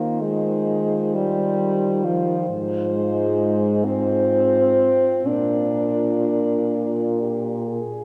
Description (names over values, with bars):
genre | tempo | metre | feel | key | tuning
classical, lyrical piece for horn quartet | 41-45 BPM (dotted quarters) | 6/8 | rubato | unclear | A4 = 440 Hz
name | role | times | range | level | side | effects
warm French horn | melody | 0.0-7.8 s | Bb4 to C5 | -30 LUFS | equal | none
mellow French horn | second line | 0.0-8.0 s | F4 to Ab4 | -30 LUFS | equal | none
mellow French horn | accompaniment | 0.0-7.7 s | F3 to D4 | -23 LUFS | equal | none
mellow French horn | bass | 0.0-7.8 s | Ab2 to Eb3 | -28 LUFS | equal | none
room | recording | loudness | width
wet church reverb, RT60 3.0 s | heard from further back in the room | -21 LUFS | mono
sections
0.0-8.0 A section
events
none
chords
0.0 Fm7/Eb; 2.5 Fm/Ab; 5.3 Bb